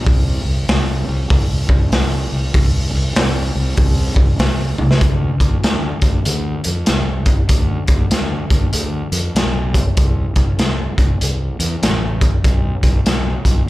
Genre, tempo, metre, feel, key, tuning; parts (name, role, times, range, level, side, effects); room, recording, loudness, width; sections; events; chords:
blues rock power trio and southern rock; 97 BPM; 4/4; swing 63% on 8ths; D dorian from 5.0 s; A4 = 445 Hz
fuzz fingered electric bass; bass; 0.0-13.6 s; A1 to F2; -19 LUFS; equal; overdrive
raw garage drum kit; drums; 0.1-13.6 s; hi-hat, kick drum, snare drum, toms; -16 LUFS; equal
little or no reverb; live gig heard through the venue's PA, club reverb; -14 LUFS; side -17 dB against mid
0.0-5.0 A section; 5.0-13.7 B section
drum fill 4.7-5.0